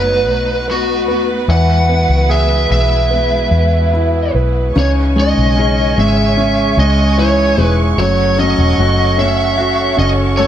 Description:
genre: pop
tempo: 75 BPM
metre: 4/4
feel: straight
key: unclear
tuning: A4 = 440 Hz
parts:
  - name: lead guitar through a small cranked amp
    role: melody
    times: 0.0-10.5 s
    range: F#4 to F#5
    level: -16 LUFS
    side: right 1 dB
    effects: overdrive
  - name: clear concert grand piano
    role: accompaniment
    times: 0.0-10.5 s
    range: C#3 to B4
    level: -17 LUFS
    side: right 1 dB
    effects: none
  - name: dark studio string section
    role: sustained chords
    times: 0.0-10.5 s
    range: G#3 to C#6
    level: -22 LUFS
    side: right 2 dB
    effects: none
  - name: vintage muted fingered electric bass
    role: bass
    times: 0.0-10.5 s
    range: E1 to E2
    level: -15 LUFS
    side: equal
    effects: none
  - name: flamenco guitar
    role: arpeggios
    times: 4.8-10.5 s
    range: F#2 to A4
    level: -23 LUFS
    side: left 9 dB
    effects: none
room: light reverb, small room ambience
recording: none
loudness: -11 LUFS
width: side -10 dB against mid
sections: 0.0-4.8 A section; 4.8-10.5 B section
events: none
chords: 0.0 B7; 1.5 Eadd9; 4.8 C#madd9; 8.0 F#m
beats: 0.68 | 1.49 2.30 3.11 3.94 | 4.76 5.58 6.38 7.18 | 7.98 8.78 9.58 10.38

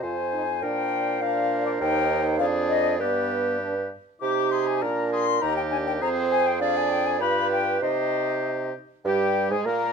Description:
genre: quick classical-period movement for wind quintet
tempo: 100 BPM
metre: 2/4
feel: rubato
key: C minor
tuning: A4 = 439 Hz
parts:
  - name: concert flute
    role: melody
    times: 0.0-9.9 s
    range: D5 to D6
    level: -27 LUFS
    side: left 11 dB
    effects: none
  - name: clear oboe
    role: second line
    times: 0.0-9.9 s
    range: G4 to C5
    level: -34 LUFS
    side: left 4 dB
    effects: none
  - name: clear French horn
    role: accompaniment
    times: 0.0-9.9 s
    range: G3 to F4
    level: -30 LUFS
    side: right 1 dB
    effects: none
  - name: clear clarinet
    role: accompaniment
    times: 0.0-9.9 s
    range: G4 to D5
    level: -29 LUFS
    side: right 12 dB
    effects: none
  - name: clear bassoon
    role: bass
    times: 0.0-9.9 s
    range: Eb2 to C3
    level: -27 LUFS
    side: right 4 dB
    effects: none
room: light reverb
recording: dark, warm production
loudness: -22 LUFS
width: side -6 dB against mid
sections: 0.0-9.1 A section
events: none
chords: 0.0 Fm; 0.6 Bb; 1.8 Eb; 2.4 Ddim/F; 3.0 G; 4.2 Cm; 4.8 Bb; 5.4 Eb; 6.0 Fm; 6.6 Ddim/F; 7.2 G7; 7.8 Cm; 9.1 N.C.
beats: 0.03 | 0.63 1.22 | 1.81 2.41 | 3.00 3.61 | 4.22 4.83 | 5.43 6.02 | 6.61 7.21 | 7.82 8.44 | 9.05 9.65

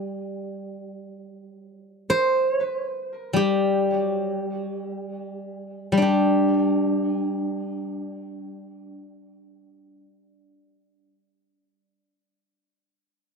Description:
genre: chinese traditional, Chinese solo plucked strings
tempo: free time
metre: none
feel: none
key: unclear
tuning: A4 = 440 Hz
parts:
  - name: steel-string zither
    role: solo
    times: 0.0-12.0 s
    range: G3 to C5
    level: -23 LUFS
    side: equal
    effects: tape echo
room: light reverb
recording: dry, close 1970s-style studio recording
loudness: -21 LUFS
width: side -4 dB against mid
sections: 0.0-6.0 A section; 6.0-11.9 B section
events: slowing down 0.5-6.0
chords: none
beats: free time

